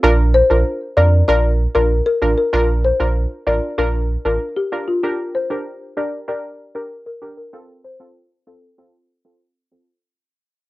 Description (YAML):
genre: dancehall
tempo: 96 BPM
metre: 4/4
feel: straight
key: Bb major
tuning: A4 = 440 Hz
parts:
  - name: glassy wavetable pluck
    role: accompaniment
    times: 0.0-9.9 s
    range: C4 to Bb4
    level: -21 LUFS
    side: right 2 dB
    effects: chorus, cassette tape
  - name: sub bass with octave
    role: bass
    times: 0.0-4.4 s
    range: A1 to F2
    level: -16 LUFS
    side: right 1 dB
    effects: none
  - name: folk marimba with medium mallets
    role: melody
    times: 0.3-8.6 s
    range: F4 to D5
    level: -19 LUFS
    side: left 3 dB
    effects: cassette tape
room: light reverb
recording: home recording on cassette, low-pass filter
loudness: -15 LUFS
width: side -18 dB against mid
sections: 0.0-10.0 A section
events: fade-out 0.0-10.0; filter sweep 0.0-10.0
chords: 0.0 Bb; 5.0 Gm; 7.5 F